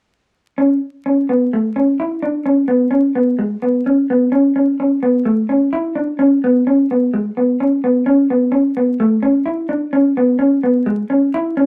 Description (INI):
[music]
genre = highlife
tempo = 128 BPM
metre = 4/4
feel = straight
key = A major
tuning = A4 = 440 Hz
[part]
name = electric guitar at the edge of break-up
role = solo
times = 0.6-11.7 s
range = G#3 to E4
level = -16 LUFS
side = equal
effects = none
[sound]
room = wet studio reverb, RT60 0.5 s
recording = vinyl crackle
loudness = -16 LUFS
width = mono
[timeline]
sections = 0.6-8.1 A section; 8.1-11.7 B section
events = none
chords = none